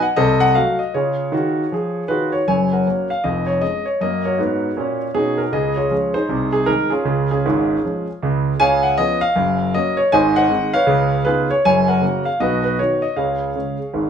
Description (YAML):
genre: jazz, stride piano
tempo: 157 BPM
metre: 4/4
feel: swing 63% on 8ths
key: F# major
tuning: A4 = 440 Hz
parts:
  - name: warm concert grand piano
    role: solo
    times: 0.0-14.1 s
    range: E#1 to G#5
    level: -16 LUFS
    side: equal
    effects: none
room: wet studio reverb, RT60 0.8 s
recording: band playing live in one room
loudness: -16 LUFS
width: side -8 dB against mid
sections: 0.0-2.5 A section; 2.5-14.1 B section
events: none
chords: 0.2 Cdim7; 0.9 C#; 2.5 F#; 3.2 C#/E#; 4.0 F#; 5.5 C#; 6.3 G#/B#; 7.1 C#; 8.6 C#7; 9.4 F#; 10.1 G#7; 10.9 C#9; 11.6 F#; 12.4 B; 13.2 C#